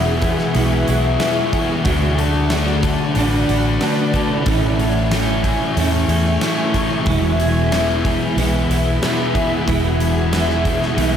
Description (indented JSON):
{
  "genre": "rock, shoegaze and dream pop",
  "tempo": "92 BPM",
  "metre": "4/4",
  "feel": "straight",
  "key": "E mixolydian",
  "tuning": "A4 = 440 Hz",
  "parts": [
    { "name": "granular cloud pad", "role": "sustained chords", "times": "0.0-11.2 s", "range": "G#4 to C#6", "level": "-26 LUFS", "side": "equal", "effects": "built-in reverb" },
    { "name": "picked twelve-string acoustic guitar", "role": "arpeggios", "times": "0.0-11.2 s", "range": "E3 to A4", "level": "-25 LUFS", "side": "left 2 dB", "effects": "wide subtle chorus, ping-pong delay" },
    { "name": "overdriven semi-hollow guitar", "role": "riff", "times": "0.0-11.2 s", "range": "A2 to F#4", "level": "-23 LUFS", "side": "right 7 dB", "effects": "reverse reverb" },
    { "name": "thick fuzz guitar", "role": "riff", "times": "0.0-11.2 s", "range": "E2 to D4", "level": "-20 LUFS", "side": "left 5 dB", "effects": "distortion, analog chorus" },
    { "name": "vintage muted fingered electric bass", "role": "bass", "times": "0.0-11.2 s", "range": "E1 to E2", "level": "-20 LUFS", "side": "equal", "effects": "none" },
    { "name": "huge arena drum kit", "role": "drums", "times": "0.2-11.1 s", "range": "hi-hat, kick drum, snare drum", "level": "-24 LUFS", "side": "equal", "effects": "none" }
  ],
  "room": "wet lush hall reverb, RT60 1.8 s, small room ambience",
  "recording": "dreamy mix soaked in reverb",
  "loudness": "-15 LUFS",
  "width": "side -8 dB against mid",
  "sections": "0.0-11.2 A section",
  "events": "none",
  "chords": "0.0 Eadd9; 1.9 D6; 4.5 Amaj7; 7.1 Eadd9"
}